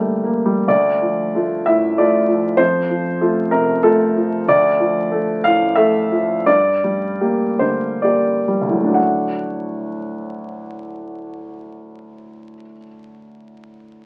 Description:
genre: neoclassical minimalist piano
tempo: 62-98 BPM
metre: 3/4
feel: rubato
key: unclear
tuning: A4 = 440 Hz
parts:
  - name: warm concert grand piano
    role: solo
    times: 0.0-14.1 s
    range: D2 to F#5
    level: -18 LUFS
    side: equal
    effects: none
room: moderate small room reverb, RT60 0.5 s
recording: very old 78 rpm record, vinyl crackle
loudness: -17 LUFS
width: mono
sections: 0.7-9.0 A section; 9.0-14.1 B section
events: slowing down 3.5-9.0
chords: 0.0 Gm; 0.7 Dm; 2.6 F; 4.5 Dm; 6.5 Gm; 9.0 D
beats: | 0.68 1.34 1.98 | 2.60 3.22 3.84 | 4.50 5.13 5.78 | 6.47 7.21 8.03 | 8.96 9.87 10.77 | 11.67 12.57 13.48

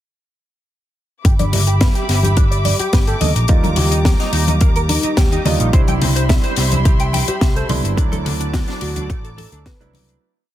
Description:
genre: nu-disco, nu disco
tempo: 107 BPM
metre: 4/4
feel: straight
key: unclear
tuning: A4 = 439 Hz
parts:
  - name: direct-recorded clean electric guitar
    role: riff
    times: 1.2-10.2 s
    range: D3 to C6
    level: -26 LUFS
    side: right 2 dB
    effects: ensemble chorus, low-pass filter, digital delay
  - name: picked electric bass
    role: bass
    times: 1.2-10.1 s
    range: G1 to Eb2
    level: -19 LUFS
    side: equal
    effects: none
  - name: electronic kick drum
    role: drums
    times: 1.2-9.8 s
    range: none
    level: -15 LUFS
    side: equal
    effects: small room ambience
  - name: tight funk drum kit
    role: drums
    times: 1.2-10.2 s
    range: hi-hat, snare drum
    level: -22 LUFS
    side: left 3 dB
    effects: small room ambience
  - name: dark studio string section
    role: sustained chords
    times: 1.3-10.2 s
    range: F#4 to D6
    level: -26 LUFS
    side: equal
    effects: sidechain pumping
  - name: congas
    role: percussion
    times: 1.4-10.1 s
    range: none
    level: -25 LUFS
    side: left 2 dB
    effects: none
  - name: soft octave-layered synth lead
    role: melody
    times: 2.8-10.2 s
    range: Eb4 to B4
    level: -26 LUFS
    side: left 2 dB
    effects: chorus, digital delay
  - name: warm baby grand piano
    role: accompaniment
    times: 3.5-10.2 s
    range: F#3 to F4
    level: -25 LUFS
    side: right 4 dB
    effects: digital delay
room: small room ambience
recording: dense, heavily limited modern master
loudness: -14 LUFS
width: side -13 dB against mid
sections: 1.2-10.2 groove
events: filter sweep on clean electric guitar 1.2-10.2; fade-out 7.2-10.2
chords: 1.2 G6; 3.2 Ebmaj7; 5.7 Cmaj7; 8.0 D7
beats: | 1.25 1.81 2.37 2.93 | 3.49 4.05 4.61 5.17 | 5.74 6.30 6.86 7.42 | 7.98 8.54 9.10 9.66

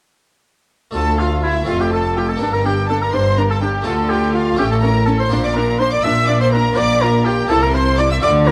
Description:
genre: classical, baroque-style concerto movement with solo episodes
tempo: 82 BPM (dotted quarters)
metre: 6/8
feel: straight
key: D minor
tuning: A4 = 444 Hz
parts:
  - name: rich chamber violin section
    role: melody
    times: 0.9-8.5 s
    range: E5 to E6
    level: -27 LUFS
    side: equal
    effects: none
  - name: harpsichord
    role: accompaniment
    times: 0.9-8.5 s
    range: D2 to F4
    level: -28 LUFS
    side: equal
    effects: none
  - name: rich studio viola section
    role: accompaniment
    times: 0.9-8.5 s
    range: C#4 to F4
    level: -28 LUFS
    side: equal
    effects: none
  - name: clear chamber double bass section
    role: bass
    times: 0.9-8.5 s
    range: F1 to D2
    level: -23 LUFS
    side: equal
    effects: none
  - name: warm oboe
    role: melody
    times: 1.0-8.5 s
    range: E4 to E5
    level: -21 LUFS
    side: equal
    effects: none
  - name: rich chamber violin section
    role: second line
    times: 1.0-8.5 s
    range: E4 to E5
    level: -27 LUFS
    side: equal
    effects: none
  - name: rich chamber cello section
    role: bass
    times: 1.0-8.5 s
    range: D2 to D3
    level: -24 LUFS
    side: equal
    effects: none
room: moderate recital hall reverb, RT60 1.6 s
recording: dark, warm production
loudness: -16 LUFS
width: mono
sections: 0.9-8.5 A section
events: none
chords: 0.9 Dm; 1.7 F; 2.4 Gm; 3.9 Dm; 4.6 A; 5.3 Bb; 6.8 Bb6; 7.5 C7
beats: | 0.95 1.68 | 2.41 3.13 | 3.86 4.59 | 5.32 6.04 | 6.77 7.50 | 8.23

